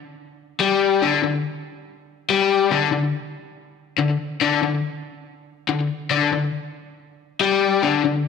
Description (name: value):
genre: rock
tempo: 141 BPM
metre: 4/4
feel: straight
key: unclear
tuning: A4 = 438 Hz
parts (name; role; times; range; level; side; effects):
- overdriven electric guitar; solo; 0.6-8.2 s; D3 to G3; -19 LUFS; left 6 dB; slapback echo
room: moderate echo chamber reverb, RT60 2.1 s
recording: none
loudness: -18 LUFS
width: side -5 dB against mid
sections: 0.0-8.3 A section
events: none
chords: none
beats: 0.18 0.61 | 1.03 1.45 1.88 2.30 | 2.72 3.15 3.57 4.00 | 4.42 4.84 5.27 5.70 | 6.12 6.55 6.98 7.40 | 7.83